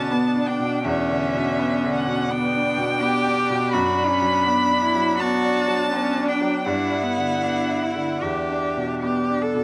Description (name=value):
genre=neoclassical piano and strings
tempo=74-84 BPM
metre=4/4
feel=rubato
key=E dorian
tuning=A4 = 440 Hz
part: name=warm violin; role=melody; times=0.0-9.0 s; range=E5 to B5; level=-27 LUFS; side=equal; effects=none
part: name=clear cello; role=second line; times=0.0-9.6 s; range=B3 to A4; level=-28 LUFS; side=equal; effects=none
part: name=bright baby grand piano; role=accompaniment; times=0.0-9.6 s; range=E2 to E4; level=-26 LUFS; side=equal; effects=none
part: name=rich viola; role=accompaniment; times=0.0-9.6 s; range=D4 to E4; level=-32 LUFS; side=equal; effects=none
room=light reverb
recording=recorded outdoors, with no room sound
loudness=-22 LUFS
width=mono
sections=0.0-9.6 A section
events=none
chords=0.0 Em7; 3.7 Bm7/F#; 6.7 G6; 8.2 Em7